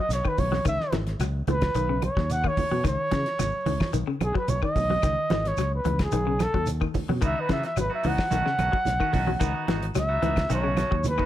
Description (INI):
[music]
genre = afrobeat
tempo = 110 BPM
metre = 4/4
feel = straight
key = C# minor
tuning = A4 = 440 Hz
[part]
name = breathy trumpet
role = melody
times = 0.0-11.3 s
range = G#4 to F#5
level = -27 LUFS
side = right 1 dB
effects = plate reverb
[part]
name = electric guitar at the edge of break-up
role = arpeggios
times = 0.0-11.3 s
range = C#3 to F#3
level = -32 LUFS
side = left 7 dB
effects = analog chorus, plate reverb
[part]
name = fingered electric bass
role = bass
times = 0.1-11.2 s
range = G#1 to C#3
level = -28 LUFS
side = equal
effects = none
[part]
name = damped 70s drum kit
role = drums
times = 0.1-11.3 s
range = hi-hat, kick drum, snare drum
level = -29 LUFS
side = equal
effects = none
[part]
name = shekere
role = percussion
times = 0.1-11.2 s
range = none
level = -34 LUFS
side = right 4 dB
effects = none
[part]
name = claves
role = percussion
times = 0.2-11.3 s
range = none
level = -41 LUFS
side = left 20 dB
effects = none
[part]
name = congas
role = percussion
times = 0.4-11.2 s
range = none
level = -32 LUFS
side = right 6 dB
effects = none
[part]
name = twangy electric guitar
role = stabs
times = 7.2-11.3 s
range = D#3 to F#4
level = -33 LUFS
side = right 4 dB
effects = plate reverb
[sound]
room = light reverb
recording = none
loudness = -23 LUFS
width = side -12 dB against mid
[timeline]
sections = 0.0-11.3 A section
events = trumpet solo 0.0-11.3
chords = 0.0 Badd9; 0.7 C#madd9; 1.7 Badd9; 2.8 C#madd9; 3.9 Badd9; 5.0 C#madd9; 6.1 Badd9; 7.2 C#m11; 8.3 B9; 9.4 C#m11; 10.5 B9